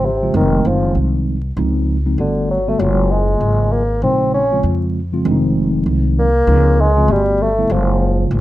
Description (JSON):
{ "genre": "hip hop, jazz-hop", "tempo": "98 BPM", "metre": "4/4", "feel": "swing 62% on 16ths", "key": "unclear", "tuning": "A4 = 443 Hz", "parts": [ { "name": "dark bassoon", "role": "melody", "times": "0.0-8.3 s", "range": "C3 to Db4", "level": "-17 LUFS", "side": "equal", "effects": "slapback echo" }, { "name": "mellow tine electric piano", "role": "accompaniment", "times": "0.0-8.4 s", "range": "Db3 to F#4", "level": "-19 LUFS", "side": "equal", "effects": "medium stereo tremolo" }, { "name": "upright bass", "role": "bass", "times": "0.0-8.4 s", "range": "F1 to F2", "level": "-17 LUFS", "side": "equal", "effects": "none" } ], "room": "light reverb", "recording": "rough home demo mix, vinyl crackle", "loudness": "-13 LUFS", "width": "side -15 dB against mid", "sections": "0.0-8.4 A section", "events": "bassoon solo 0.0-8.4", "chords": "0.3 Fm7; 1.6 Dbmaj9; 2.2 Gmaj9; 2.8 Gbmaj9; 4.0 Bbm11; 5.2 Fm7; 6.5 Dbmaj9; 7.1 Gmaj9; 7.7 Gbmaj9", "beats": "0.35 0.96 | 1.57 2.19 2.80 3.41 | 4.02 4.63 5.25 5.86 | 6.47 7.08 7.70 8.31" }